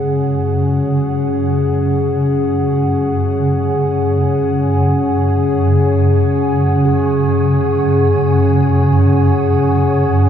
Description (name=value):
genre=dark ambient drone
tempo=free time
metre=none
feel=none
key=unclear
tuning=A4 = 441 Hz
part: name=dark analog pad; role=sustained chords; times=0.0-10.3 s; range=C#4 to F#5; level=-16 LUFS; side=left 2 dB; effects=wide subtle chorus, shimmer reverb
part: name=swarming drone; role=drone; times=0.0-10.3 s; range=F#2 to C#3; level=-14 LUFS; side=right 1 dB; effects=built-in reverb
part: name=bronze singing bowl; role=texture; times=6.9-10.3 s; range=G#4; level=-22 LUFS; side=right 2 dB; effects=shimmer reverb
room=wet cathedral reverb, RT60 5.8 s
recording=dark, warm production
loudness=-12 LUFS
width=side -9 dB against mid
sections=0.0-10.3 A section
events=none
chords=0.0 F#sus2